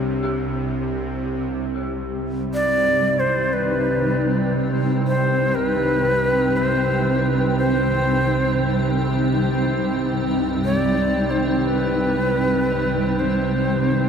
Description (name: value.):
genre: dark ambient drone.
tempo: free time.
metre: none.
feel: none.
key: C harmonic minor.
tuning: A4 = 440 Hz.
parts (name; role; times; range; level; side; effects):
dark detuned synth bell; arpeggios; 0.0-4.8 s; D4 to G4; -33 LUFS; equal; chorus, diffuse ambient delay.
bowed-like drone; drone; 0.0-14.1 s; C2 to C3; -22 LUFS; right 1 dB; built-in reverb.
granular cloud pad; sustained chords; 2.0-14.1 s; G3 to G5; -23 LUFS; equal; built-in reverb.
bright shakuhachi; melody; 2.5-14.1 s; B4 to D5; -22 LUFS; equal; diffuse ambient delay.
room: wet huge ambient reverb, RT60 8.3 s.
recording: none.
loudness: -18 LUFS.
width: side -7 dB against mid.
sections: 0.0-1.5 A section; 1.5-14.1 B section.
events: none.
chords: 0.0 Csus2; 1.5 Cm.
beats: free time.